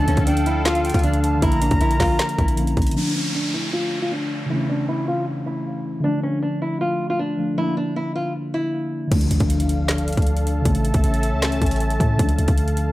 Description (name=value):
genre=hip hop, trap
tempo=156 BPM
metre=4/4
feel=half-time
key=D harmonic minor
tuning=A4 = 437 Hz
part: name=nylon-string guitar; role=melody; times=0.0-9.1 s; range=C#4 to F4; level=-25 LUFS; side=equal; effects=low-pass filter, analog delay
part: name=reedy concert flute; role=second line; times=0.0-2.5 s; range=F5 to Bb5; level=-27 LUFS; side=right 2 dB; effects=analog delay
part: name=muted felt-like synth keys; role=accompaniment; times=0.0-12.9 s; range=C#3 to D4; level=-25 LUFS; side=left 1 dB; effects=chorus, low-pass filter
part: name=sweeping resonant pad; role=sustained chords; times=0.0-2.9, 9.1-12.9 s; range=D3 to Bb5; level=-27 LUFS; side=equal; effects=chorus
part: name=warm 808-style bass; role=bass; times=0.0-3.0, 9.1-12.9 s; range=A1 to A2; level=-21 LUFS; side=equal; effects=none
part: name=trap drum kit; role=drums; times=0.1-3.0, 9.1-12.9 s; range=crash cymbal, handclaps, hi-hat, kick drum, snare drum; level=-22 LUFS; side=equal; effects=none
part: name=downlifter and impact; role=sound effects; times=3.0-6.0, 9.1-10.7 s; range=none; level=-31 LUFS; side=equal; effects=none
room=light reverb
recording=dry, gritty hardware recording, transformer saturation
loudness=-18 LUFS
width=side -16 dB against mid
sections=0.0-3.0 A section; 3.0-9.1 B section; 9.1-12.9 C section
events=filter sweep 3.0-9.1; impact 9.1-10.7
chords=0.0 Dm; 1.4 Bb; 3.0 Dm; 4.5 A; 6.0 Dm; 7.6 Bb; 9.1 Dm; 10.7 A; 12.2 Dm